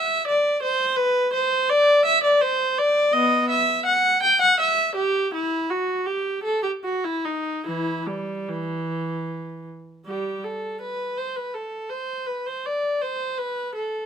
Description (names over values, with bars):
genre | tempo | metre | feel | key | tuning
classical, baroque-style suite movement for unaccompanied viola | 72-87 BPM | 3/4 | rubato | E minor, G major from 10.0 s | A4 = 438 Hz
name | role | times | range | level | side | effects
warm viola | solo | 0.0-14.1 s | E3 to G5 | -20 LUFS | equal | none
room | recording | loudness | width
light reverb | minimal, uncompressed stereo recording | -20 LUFS | side -8 dB against mid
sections
0.0-10.0 A section; 10.0-14.1 A section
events
none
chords
none